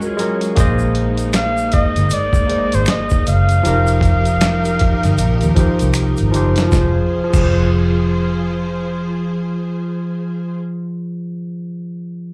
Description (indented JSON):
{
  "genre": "R&B, neo-soul",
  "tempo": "78 BPM",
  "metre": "4/4",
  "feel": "swing 60% on 16ths",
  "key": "F minor",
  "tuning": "A4 = 436 Hz",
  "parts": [
    { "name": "mellow electric guitar", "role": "second line", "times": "0.0-0.6 s", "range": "F4 to Ab4", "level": "-32 LUFS", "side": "equal", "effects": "none" },
    { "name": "overdriven tine electric piano", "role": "accompaniment", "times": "0.0-12.3 s", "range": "F3 to Eb5", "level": "-22 LUFS", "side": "equal", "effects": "plate reverb, slapback echo" },
    { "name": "rich studio string section", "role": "sustained chords", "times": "0.0-10.6 s", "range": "F3 to C5", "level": "-29 LUFS", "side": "equal", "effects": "plate reverb" },
    { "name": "tube shaker and finger snaps", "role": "percussion", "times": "0.0-7.5 s", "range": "none", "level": "-33 LUFS", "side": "equal", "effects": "none" },
    { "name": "dusty soul sampler-style drum kit", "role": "drums", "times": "0.2-7.5 s", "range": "crash cymbal, hi-hat, kick drum, snare drum", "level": "-20 LUFS", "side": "equal", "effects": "none" },
    { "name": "vintage muted fingered electric bass", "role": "bass", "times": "0.6-11.3 s", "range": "F1 to Eb2", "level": "-19 LUFS", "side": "equal", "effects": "none" },
    { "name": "warm flugelhorn", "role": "melody", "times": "1.4-5.9 s", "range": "C5 to F5", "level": "-22 LUFS", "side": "equal", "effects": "slapback echo, plate reverb" }
  ],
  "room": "light reverb",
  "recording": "live gig heard through the venue's PA, club reverb",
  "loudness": "-17 LUFS",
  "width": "mono",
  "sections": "0.0-6.7 A section; 6.7-9.8 B section",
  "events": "drum fill 6.0-6.7",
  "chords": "0.0 Ab9sus4; 0.6 Bb9sus4; 3.6 F9sus4; 6.7 Fm"
}